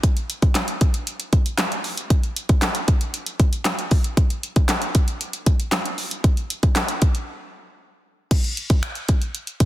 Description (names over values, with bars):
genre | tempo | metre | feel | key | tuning
pop | 116 BPM | 4/4 | straight | none | none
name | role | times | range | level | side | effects
pop drum kit | drums | 0.0-9.7 s | crash cymbal, finger snaps, handclaps, hi-hat, kick drum, snare drum | -19 LUFS | equal | soft clipping on snare
room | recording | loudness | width
light reverb | dense, heavily limited modern master | -19 LUFS | side -15 dB against mid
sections
0.0-8.3 A section; 8.3-9.7 B section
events
break 7.3-8.3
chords
none